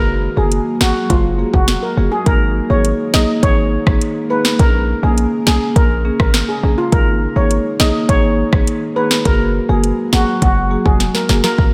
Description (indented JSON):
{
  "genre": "dancehall",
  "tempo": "103 BPM",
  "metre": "4/4",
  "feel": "straight",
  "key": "unclear",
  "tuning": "A4 = 441 Hz",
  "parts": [
    { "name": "steel pan", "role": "melody", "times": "0.0-11.6 s", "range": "E#4 to D#5", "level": "-22 LUFS", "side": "equal", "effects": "diffuse ambient delay" },
    { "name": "marimba with medium mallets", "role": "accompaniment", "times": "0.0-11.5 s", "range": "A#3 to G#4", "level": "-22 LUFS", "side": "equal", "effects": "none" },
    { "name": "ethereal airy pad", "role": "sustained chords", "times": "0.0-11.6 s", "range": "C#3 to A#3", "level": "-28 LUFS", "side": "equal", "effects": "ensemble chorus, built-in reverb, sidechain pumping" },
    { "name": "hard-hitting 808-style bass", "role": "bass", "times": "0.0-11.7 s", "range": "E#1 to B1", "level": "-19 LUFS", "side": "equal", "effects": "none" },
    { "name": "afro-pop drum kit", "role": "drums", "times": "0.5-11.7 s", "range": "hi-hat, kick drum, rim click, snare drum", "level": "-18 LUFS", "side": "equal", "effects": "none" }
  ],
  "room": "moderate lush hall reverb, RT60 1.8 s",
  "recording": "dreamy mix soaked in reverb",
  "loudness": "-15 LUFS",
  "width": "mono",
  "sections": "0.0-11.6 A section",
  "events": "drum fill 11.0-11.6",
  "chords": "0.0 F#add9; 2.3 G#sus2; 4.6 A#m7; 6.9 G#sus2; 9.3 F#add9",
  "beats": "0.52 1.10 1.68 | 2.26 2.85 3.43 4.01 | 4.59 5.18 5.76 6.34 | 6.92 7.51 8.09 8.67 | 9.25 9.84 10.42 11.00 | 11.58"
}